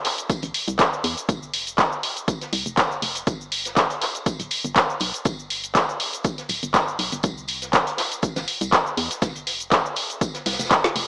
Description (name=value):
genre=deep house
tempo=121 BPM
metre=4/4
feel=swing 54% on 16ths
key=unclear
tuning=A4 = 436 Hz
part: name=deep house drum kit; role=drums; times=0.0-11.1 s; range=handclaps, hi-hat, shaker, snare drum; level=-21 LUFS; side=equal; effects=none
part: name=open jazz drum kit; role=drums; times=0.0-11.1 s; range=hi-hat, snare drum, tambourine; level=-33 LUFS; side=equal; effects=high-pass filter on hats, high-pass filter on snare, high-pass filter on perc, high-pass filter on room
part: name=electronic kick drum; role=drums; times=0.3-10.8 s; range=none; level=-25 LUFS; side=equal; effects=none
part: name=organ-like FM bass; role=bass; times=0.4-11.1 s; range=D1 to E2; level=-31 LUFS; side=equal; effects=tube saturation, sidechain pumping
room=moderate lush hall reverb, RT60 2.1 s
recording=small speaker sound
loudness=-20 LUFS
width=side -28 dB against mid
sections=0.0-11.1 A section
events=drum fill 10.8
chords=none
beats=0.30 0.79 | 1.29 1.78 2.28 2.77 | 3.27 3.77 4.26 4.76 | 5.25 5.75 6.25 6.74 | 7.24 7.73 8.23 8.72 | 9.22 9.72 10.21 10.71